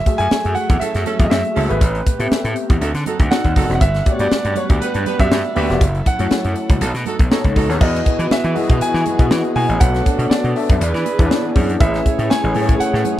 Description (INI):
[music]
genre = polished 1980s jazz-funk pop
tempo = 120 BPM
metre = 4/4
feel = swing 54% on 16ths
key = E major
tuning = A4 = 440 Hz
[part]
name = clear grand piano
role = melody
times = 0.0-13.2 s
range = B4 to G#5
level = -23 LUFS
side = right 2 dB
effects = none
[part]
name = muted studio string section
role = sustained chords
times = 0.0-13.2 s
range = D3 to F#5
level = -29 LUFS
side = right 2 dB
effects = none
[part]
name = overdriven tine electric piano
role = accompaniment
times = 0.1-13.2 s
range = A3 to E5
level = -22 LUFS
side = left 3 dB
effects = ensemble chorus
[part]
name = crisp fusion drum kit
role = drums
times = 0.1-13.2 s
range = crash cymbal, hi-hat, kick drum, snare drum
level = -17 LUFS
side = equal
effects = none
[part]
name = gritty slap bass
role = bass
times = 0.2-13.0 s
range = E1 to E3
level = -20 LUFS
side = equal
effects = overdrive
[part]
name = congas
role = percussion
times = 0.3-13.2 s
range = none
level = -30 LUFS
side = right 16 dB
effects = none
[part]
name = warm horn section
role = second line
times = 0.8-13.2 s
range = B3 to C#5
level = -26 LUFS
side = right 4 dB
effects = none
[sound]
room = little or no reverb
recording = none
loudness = -14 LUFS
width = side -13 dB against mid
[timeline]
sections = 0.0-7.8 A section; 7.8-13.2 B section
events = none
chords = 0.0 F#m9; 1.8 Am7; 2.8 D7b9; 3.8 Gmaj7; 5.8 F#m7; 6.8 B9; 7.8 Emaj9; 9.8 Bm9; 10.8 E7; 11.8 Amaj9